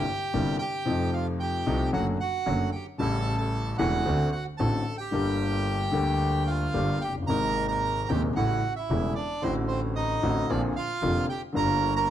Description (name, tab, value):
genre	tango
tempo	113 BPM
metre	4/4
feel	rubato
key	G minor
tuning	A4 = 440 Hz
part	bandoneon	melody	0.0-12.1 s	C4 to Bb5	-30 LUFS	right 3 dB	none
part	warm baby grand piano	accompaniment	0.0-12.1 s	Eb1 to G4	-28 LUFS	left 3 dB	none
part	bright double bass	bass	0.0-12.1 s	E1 to F2	-30 LUFS	right 2 dB	none
room	light reverb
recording	close, detailed microphones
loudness	-24 LUFS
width	side -11 dB against mid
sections	0.0-12.1 A section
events	none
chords	0.0 C7/G; 0.9 F7; 1.9 D/F#; 3.0 A7; 4.1 D7; 5.1 Gm; 7.3 Abadd9; 8.4 A7; 9.4 D7/A; 10.5 Bbadd9; 11.6 Gm7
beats	0.34 | 0.88 1.41 1.94 2.47 | 3.00 3.53 4.06 4.59 | 5.13 5.67 6.20 6.75 | 7.29 7.83 8.37 8.90 | 9.43 9.96 10.50 11.03 | 11.56 12.09